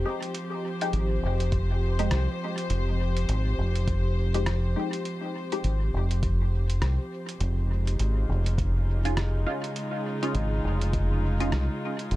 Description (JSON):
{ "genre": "ambient dub", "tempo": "102 BPM", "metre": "4/4", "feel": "swing 59% on 16ths", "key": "F minor", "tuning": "A4 = 440 Hz", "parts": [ { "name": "dark studio string section", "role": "sustained chords", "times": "0.0-12.2 s", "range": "Db3 to C5", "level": "-32 LUFS", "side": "equal", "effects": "none" }, { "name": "deep dub fingered electric bass", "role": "bass", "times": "0.0-12.2 s", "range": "F1 to C2", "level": "-25 LUFS", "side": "equal", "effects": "none" }, { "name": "filtered dub chord stab", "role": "stabs", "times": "0.1-11.5 s", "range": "Ab3 to G4", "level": "-34 LUFS", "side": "left 1 dB", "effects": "phaser, wide subtle chorus, cassette tape, dub echo" }, { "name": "lo-fi sampler-style drum kit", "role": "drums", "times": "0.2-12.2 s", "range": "hi-hat, rim click", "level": "-37 LUFS", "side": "right 1 dB", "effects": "dub echo" }, { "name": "electronic kick drum", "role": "drums", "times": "1.5-11.1 s", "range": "none", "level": "-29 LUFS", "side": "equal", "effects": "overdrive" } ], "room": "little or no reverb", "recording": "dark, warm production", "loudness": "-24 LUFS", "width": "side -16 dB against mid", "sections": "0.0-12.2 A section", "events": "none", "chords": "0.0 Fm9; 7.4 Dbadd9/F" }